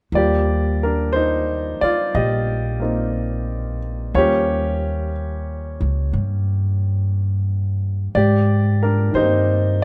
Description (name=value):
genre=jazz ballad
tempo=60 BPM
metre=4/4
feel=swing 67% on 8ths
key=Eb major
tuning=A4 = 438 Hz
part: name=warm baby grand piano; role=accompaniment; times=0.1-9.8 s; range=Eb3 to Eb5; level=-22 LUFS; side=equal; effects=none
part: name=upright bass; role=bass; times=0.1-9.8 s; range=Bb1 to Ab2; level=-22 LUFS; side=equal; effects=none
room=little or no reverb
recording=none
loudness=-20 LUFS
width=mono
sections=0.1-9.8 A section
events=none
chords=0.1 Ebmaj7; 4.1 Eb7; 8.1 Abmaj9